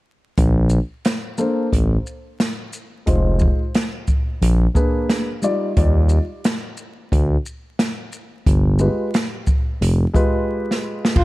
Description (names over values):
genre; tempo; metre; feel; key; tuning
hip hop, jazz-hop; 89 BPM; 4/4; swing 66% on 16ths; unclear; A4 = 440 Hz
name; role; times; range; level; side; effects
smooth gliding synth bass; bass; 0.4-11.2 s; F1 to Eb2; -16 LUFS; equal; none
open jazz drum kit; drums; 0.4-11.2 s; crash cymbal, hi-hat, kick drum, shaker, snare drum; -19 LUFS; equal; none
dark baby grand piano; accompaniment; 1.4-11.1 s; G3 to D5; -22 LUFS; left 1 dB; none
breathy flugelhorn; melody; 11.2 s; F4; -18 LUFS; equal; none
room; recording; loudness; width
small room ambience; dark, warm production, vinyl crackle; -17 LUFS; side -19 dB against mid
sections
0.4-11.2 A section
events
drum fill 10.5-11.2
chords
0.4 Bbmaj9; 3.1 Fm7; 4.4 Bb7b9; 5.8 Ebmaj9; 8.5 G7b9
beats
| 0.37 1.05 1.72 2.40 | 3.07 3.75 4.42 5.09 | 5.77 6.44 7.12 7.79 | 8.46 9.14 9.81 10.49 | 11.16